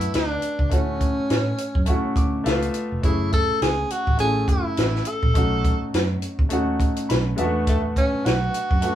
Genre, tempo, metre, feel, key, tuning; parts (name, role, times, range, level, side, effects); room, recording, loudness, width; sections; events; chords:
lush 1970s-style soul; 104 BPM; 4/4; swing 58% on 16ths; F# minor; A4 = 439 Hz
breathy tenor saxophone; melody; 0.0-8.9 s; A3 to A4; -25 LUFS; equal
warm baby grand piano; accompaniment; 0.0-8.9 s; G#3 to D6; -26 LUFS; left 1 dB
vintage muted fingered electric bass; bass; 0.0-8.8 s; E#1 to A2; -26 LUFS; equal
compact cocktail drum kit; drums; 0.0-8.9 s; hi-hat, kick drum, snare drum; -23 LUFS; equal
moderate studio reverb, RT60 0.5 s; band playing live in one room, small room ambience; -19 LUFS; side -11 dB against mid
0.0-8.9 A section
grand piano fill 1.9-3.0, 6.8-7.7
0.0 E9sus4 (rootless); 0.7 Dmaj9; 2.5 C#7alt; 3.0 F#m9; 5.4 B9; 7.4 E9sus4